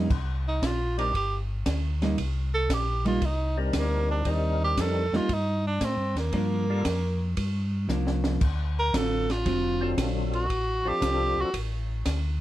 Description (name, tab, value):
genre	soul jazz organ trio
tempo	115 BPM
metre	4/4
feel	swing 69% on 8ths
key	G minor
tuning	A4 = 445 Hz
part	vintage hollow-body jazz guitar	accompaniment	0.0-10.3 s	D3 to E#4	-29 LUFS	right 1 dB	none
part	mellow tonewheel organ	bass	0.0-12.4 s	E#1 to A2	-28 LUFS	equal	chorus vibrato, slow rotary speaker
part	open jazz drum kit	drums	0.1-12.2 s	crash cymbal, hi-hat, kick drum, ride cymbal, snare drum	-32 LUFS	equal	none
part	breathy tenor saxophone	melody	0.5-11.6 s	G3 to Bb4	-28 LUFS	right 2 dB	none
part	percussive tonewheel organ	melody	1.0-11.5 s	E#3 to Bb4	-31 LUFS	left 4 dB	slow rotary speaker, chorus vibrato
room	light reverb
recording	dark, warm production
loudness	-24 LUFS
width	side -14 dB against mid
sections	0.0-12.4 A section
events	tenor saxophone solo 0.0-12.4; drum fill 7.9-8.4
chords	0.0 Gm7; 8.4 D7#9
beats	| 0.10 0.62 1.14 1.66 | 2.18 2.70 3.21 3.73 | 4.25 4.77 5.29 5.81 | 6.33 6.85 7.37 7.89 | 8.41 8.93 9.45 9.97 | 10.49 11.01 11.53 12.05